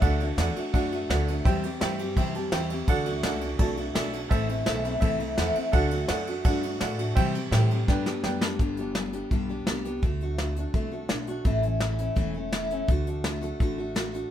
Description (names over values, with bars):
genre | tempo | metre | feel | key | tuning
honky-tonk and classic country | 168 BPM | 4/4 | straight | unclear | A4 = 437 Hz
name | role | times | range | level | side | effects
picked steel-string acoustic guitar | accompaniment | 0.0-14.3 s | G2 to G4 | -30 LUFS | left 1 dB | none
warm baby grand piano | accompaniment | 0.0-8.6 s | A4 to A5 | -32 LUFS | right 4 dB | none
upright bass | bass | 0.0-14.2 s | E1 to C3 | -30 LUFS | equal | none
soft brush drum kit | drums | 0.0-14.2 s | hi-hat, kick drum, ride cymbal, snare drum | -27 LUFS | equal | none
room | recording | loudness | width
light reverb | minimal, uncompressed stereo recording | -24 LUFS | side -10 dB against mid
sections
0.0-8.6 A section; 8.6-14.3 B section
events
grand piano fill 2.2-2.9, 8.1-8.6; drum fill 7.9-8.6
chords
0.0 D; 1.5 C; 2.9 D; 4.3 Am; 5.7 D; 7.2 C; 7.9 G; 10.0 D; 11.5 A; 12.9 D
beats
| 0.02 0.38 0.73 1.09 | 1.45 1.81 2.17 2.52 | 2.88 3.24 3.60 3.96 | 4.31 4.67 5.03 5.39 | 5.74 6.10 6.46 6.82 | 7.17 7.53 7.89 8.24 | 8.60 8.96 9.32 9.68 | 10.03 10.39 10.75 11.11 | 11.46 11.82 12.18 12.54 | 12.89 13.25 13.61 13.97